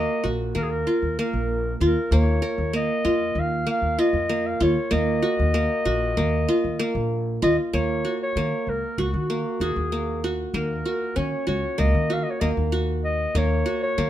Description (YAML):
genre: contemporary instrumental, chamber music in an uneven meter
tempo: 192 BPM (eighths)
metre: 9/8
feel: straight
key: Eb minor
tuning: A4 = 436 Hz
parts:
  - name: warm clarinet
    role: melody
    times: 0.0-14.1 s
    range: Gb4 to F5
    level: -27 LUFS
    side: left 1 dB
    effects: none
  - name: qanun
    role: arpeggios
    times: 0.0-14.1 s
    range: Bb3 to Bb4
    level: -24 LUFS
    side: right 1 dB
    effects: none
  - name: upright bass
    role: bass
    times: 0.0-14.1 s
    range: Bb1 to Eb3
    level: -25 LUFS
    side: equal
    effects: none
room: light reverb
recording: none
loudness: -21 LUFS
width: side -12 dB against mid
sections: 0.0-7.7 A section; 7.7-14.1 B section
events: none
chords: 0.0 Ebmadd9; 2.1 Bbm/Eb; 4.9 Ebmadd9; 7.7 Ebm7; 13.3 Gb/Eb